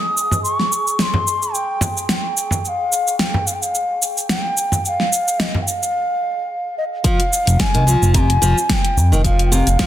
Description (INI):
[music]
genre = organic downtempo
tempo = 109 BPM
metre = 4/4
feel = swing 55% on 16ths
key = F minor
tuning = A4 = 444 Hz
[part]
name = mellow bansuri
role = melody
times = 0.0-9.9 s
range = Eb5 to Eb6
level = -20 LUFS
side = left 1 dB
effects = digital delay
[part]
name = wind-like tuned noise texture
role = texture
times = 0.0-5.9 s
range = Ab4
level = -35 LUFS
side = right 3 dB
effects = built-in reverb
[part]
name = deep house drum kit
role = drums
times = 0.2-9.9 s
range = cabasa, hi-hat, snare drum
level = -20 LUFS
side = equal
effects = none
[part]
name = frame drum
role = percussion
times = 0.3-5.6 s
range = none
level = -22 LUFS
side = equal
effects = none
[part]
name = flamenco guitar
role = arpeggios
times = 7.0-9.9 s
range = C3 to F3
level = -22 LUFS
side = right 1 dB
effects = digital delay
[part]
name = electronic kick drum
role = drums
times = 7.0-9.9 s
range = none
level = -20 LUFS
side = equal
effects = none
[part]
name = smooth gliding synth bass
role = bass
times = 7.5-9.8 s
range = F1 to F2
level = -15 LUFS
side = equal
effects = none
[sound]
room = light reverb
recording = dense, heavily limited modern master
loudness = -16 LUFS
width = side -12 dB against mid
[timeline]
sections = 0.0-7.0 A section; 7.0-9.9 B section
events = break 5.9-7.0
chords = 0.0 N.C.; 7.0 Fm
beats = | 0.44 0.99 1.54 2.09 | 2.64 3.19 3.74 4.29 | 4.84 5.39 5.94 6.49 | 7.04 7.59 8.14 8.70 | 9.25 9.80